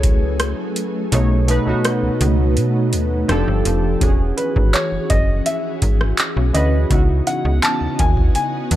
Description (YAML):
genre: contemporary R&B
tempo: 83 BPM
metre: 4/4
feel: straight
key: E major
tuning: A4 = 437 Hz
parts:
  - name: warm concert grand piano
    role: melody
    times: 0.0-8.8 s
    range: B4 to A5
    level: -23 LUFS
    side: left 1 dB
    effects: tape echo
  - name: warm analog keys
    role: accompaniment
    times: 0.0-8.8 s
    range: B2 to C#5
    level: -22 LUFS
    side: equal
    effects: chorus
  - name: ethereal airy pad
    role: sustained chords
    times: 0.0-8.8 s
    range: C#3 to D#5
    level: -27 LUFS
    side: equal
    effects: ensemble chorus, built-in reverb, sidechain pumping
  - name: slap-like FM bass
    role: bass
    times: 0.0-8.8 s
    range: E1 to B2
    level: -18 LUFS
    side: equal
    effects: none
  - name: booming analog drum machine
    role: drums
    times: 0.0-8.8 s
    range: handclaps, hi-hat, kick drum, rim click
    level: -18 LUFS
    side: equal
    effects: none
room: little or no reverb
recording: none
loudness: -15 LUFS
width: side -13 dB against mid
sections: 0.0-4.0 A section; 4.0-8.8 B section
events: kick muted 1.1-4.0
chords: 0.0 F#m9; 1.1 B9; 3.3 F69; 4.0 E69; 6.9 C#m11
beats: 0.40 | 1.12 1.85 2.57 3.29 | 4.02 4.74 5.46 6.18 | 6.91 7.63 8.35